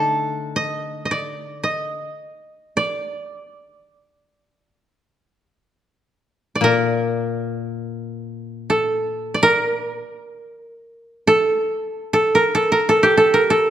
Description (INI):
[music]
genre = japanese traditional, Japanese chamber music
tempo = free time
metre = none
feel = none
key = D miyako bushi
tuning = A4 = 439 Hz
[part]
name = koto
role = melody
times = 0.0-13.7 s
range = G4 to Eb5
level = -17 LUFS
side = right 1 dB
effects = none
[part]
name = koto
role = accompaniment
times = 0.0-10.0 s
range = Bb2 to A4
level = -24 LUFS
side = left 5 dB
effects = none
[sound]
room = light reverb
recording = dark, warm production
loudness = -17 LUFS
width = side -10 dB against mid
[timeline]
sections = 0.0-13.7 A section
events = slowing down 8.6-13.7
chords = none